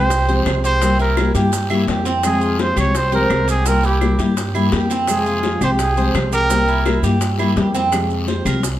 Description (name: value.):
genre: latin, Cuban son and guajira.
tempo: 169 BPM.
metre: 4/4.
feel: straight.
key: F minor.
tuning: A4 = 440 Hz.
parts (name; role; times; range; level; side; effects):
breathy trumpet; melody; 0.0-7.0 s; G4 to Db5; -20 LUFS; right 1 dB; none.
nylon-string guitar; accompaniment; 0.0-8.7 s; C3 to G4; -20 LUFS; left 3 dB; none.
Cuban tres; arpeggios; 0.0-8.6 s; C4 to C5; -22 LUFS; right 4 dB; none.
upright bass; bass; 0.0-8.8 s; C2 to G2; -20 LUFS; right 1 dB; none.
bongos; percussion; 0.1-8.8 s; none; -27 LUFS; left 4 dB; none.
guiro; percussion; 0.1-8.8 s; none; -33 LUFS; left 5 dB; none.
maracas; percussion; 0.1-8.8 s; none; -32 LUFS; right 8 dB; none.
claves; percussion; 0.5-8.6 s; none; -32 LUFS; right 6 dB; none.
room: moderate large studio reverb, RT60 1.3 s.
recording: none.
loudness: -15 LUFS.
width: side -13 dB against mid.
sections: 0.0-7.9 A section.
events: none.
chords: 0.0 Fmadd9; 0.8 C7; 2.2 Fmadd9; 3.7 C7; 5.1 Fmadd9; 6.5 C7; 7.9 Fmadd9.